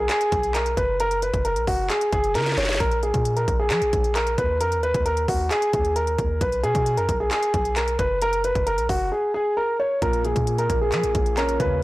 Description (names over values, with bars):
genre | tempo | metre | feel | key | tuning
hip hop, trap | 133 BPM | 4/4 | half-time | Bb phrygian | A4 = 440 Hz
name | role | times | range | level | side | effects
dark grand piano | melody | 0.0-11.8 s | Gb4 to Db5 | -22 LUFS | equal | none
warm 808-style bass | bass | 0.0-11.8 s | F#1 to F3 | -26 LUFS | equal | none
trap drum kit | drums | 0.1-11.7 s | handclaps, hi-hat, kick drum, snare drum | -27 LUFS | equal | none
felt-muted upright piano | accompaniment | 10.0-11.8 s | Bb2 to Db4 | -27 LUFS | right 2 dB | none
room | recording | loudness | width
studio reverb | blown-out, overdriven recording, overdrive | -20 LUFS | side -18 dB against mid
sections
0.0-11.8 A section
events
drum fill 2.4-2.8; drums muted 9.1-10.0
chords
0.0 B5; 1.0 Gb; 2.8 Bb5; 4.6 Eb5; 6.4 B5; 8.2 Gb; 10.0 Bbm